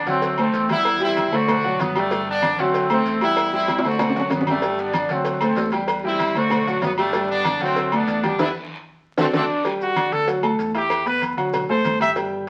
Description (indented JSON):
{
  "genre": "latin, salsa",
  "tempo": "191 BPM",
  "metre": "4/4",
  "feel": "straight",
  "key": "unclear",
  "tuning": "A4 = 440 Hz",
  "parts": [
    { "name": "bright trumpet section", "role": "melody", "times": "0.0-9.4 s", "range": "F#3 to F#4", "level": "-25 LUFS", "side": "equal", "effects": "none" },
    { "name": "bright upright piano", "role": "accompaniment", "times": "0.0-12.4 s", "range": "F#3 to G6", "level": "-25 LUFS", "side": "equal", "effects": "none" },
    { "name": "deep dub fingered electric bass", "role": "bass", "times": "0.1-12.5 s", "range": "G1 to E2", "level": "-37 LUFS", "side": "equal", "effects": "none" },
    { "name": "cowbell and bongos", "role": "percussion", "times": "0.1-12.3 s", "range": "none", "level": "-32 LUFS", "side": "equal", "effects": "none" },
    { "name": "guiro", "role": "percussion", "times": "0.1-9.4 s", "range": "none", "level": "-44 LUFS", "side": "equal", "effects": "none" },
    { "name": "maracas", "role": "percussion", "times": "0.1-12.3 s", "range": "none", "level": "-53 LUFS", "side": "equal", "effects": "none" },
    { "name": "agogo bells and timbales", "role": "percussion", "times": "0.2-12.3 s", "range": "none", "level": "-29 LUFS", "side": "equal", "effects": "none" },
    { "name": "congas", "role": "percussion", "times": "0.2-12.5 s", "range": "none", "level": "-36 LUFS", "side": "equal", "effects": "none" },
    { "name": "mellow saxophone section", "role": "second line", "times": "9.2-9.7 s", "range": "C4 to D4", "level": "-27 LUFS", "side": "equal", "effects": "none" },
    { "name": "brilliant trumpet", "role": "melody", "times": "9.8-12.1 s", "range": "F#4 to E5", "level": "-24 LUFS", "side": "equal", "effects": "none" }
  ],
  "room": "wet studio reverb, RT60 0.7 s",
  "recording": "very old 78 rpm record, vinyl crackle",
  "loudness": "-21 LUFS",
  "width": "mono",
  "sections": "0.0-9.7 A section; 9.7-12.5 B section",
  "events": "drum fill 3.7-4.6, 8.7-9.7; band accent 8.4-9.7; trumpet solo 9.7-12.5",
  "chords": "0.2 D7; 0.9 Em7; 1.5 D7; 2.1 Gsus2; 2.7 D7; 3.4 Em7; 4.0 D7; 4.6 Gsus2; 5.3 D7; 5.9 Em7; 6.5 D7; 7.1 Gsus2; 7.8 D; 8.4 Em; 9.0 D7; 9.7 G5; 10.3 D; 10.9 E5; 11.5 D7",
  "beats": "0.22 0.54 | 0.85 1.17 1.48 1.80 | 2.11 2.43 2.74 3.06 | 3.37 3.68 4.00 4.31 | 4.63 4.94 5.25 5.57 | 5.88 6.20 6.51 6.82 | 7.14 7.45 7.77 8.08 | 8.39 8.71 9.02 9.34 | 9.65 9.96 10.28 10.59 | 10.91 11.22 11.54 11.85 | 12.17 12.48"
}